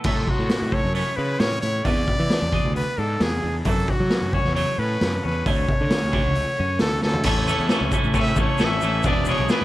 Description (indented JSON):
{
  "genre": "indie rock",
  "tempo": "133 BPM",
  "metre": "4/4",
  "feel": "straight",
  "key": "A major",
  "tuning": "A4 = 440 Hz",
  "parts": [
    { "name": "bright trumpet", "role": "melody", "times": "0.0-9.6 s", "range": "F#4 to E5", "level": "-26 LUFS", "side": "equal", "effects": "none" },
    { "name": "biting overdriven guitar", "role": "riff", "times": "0.0-9.6 s", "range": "E2 to E4", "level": "-31 LUFS", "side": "right 10 dB", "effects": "wide subtle chorus" },
    { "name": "overdriven semi-hollow guitar", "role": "riff", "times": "0.0-9.6 s", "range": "E3 to A4", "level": "-30 LUFS", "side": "left 8 dB", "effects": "none" },
    { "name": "fuzz picked electric bass", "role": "bass", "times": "0.0-9.6 s", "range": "E1 to F#3", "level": "-25 LUFS", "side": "equal", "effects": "overdrive" },
    { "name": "raw garage drum kit", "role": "drums", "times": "0.0-9.6 s", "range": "crash cymbal, hi-hat, kick drum, snare drum, toms", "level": "-23 LUFS", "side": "equal", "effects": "none" },
    { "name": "tube shaker", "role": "percussion", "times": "7.2-9.6 s", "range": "none", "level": "-41 LUFS", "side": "left 5 dB", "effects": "none" }
  ],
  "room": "light reverb, small room ambience",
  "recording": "dark, warm production",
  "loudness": "-19 LUFS",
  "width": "side -16 dB against mid",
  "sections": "0.0-7.3 A section; 7.3-9.6 B section",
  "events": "drum fill 7.0",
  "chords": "0.0 A6; 1.9 E7; 3.7 F#m7; 5.5 Dmaj7; 7.3 A; 9.0 E7"
}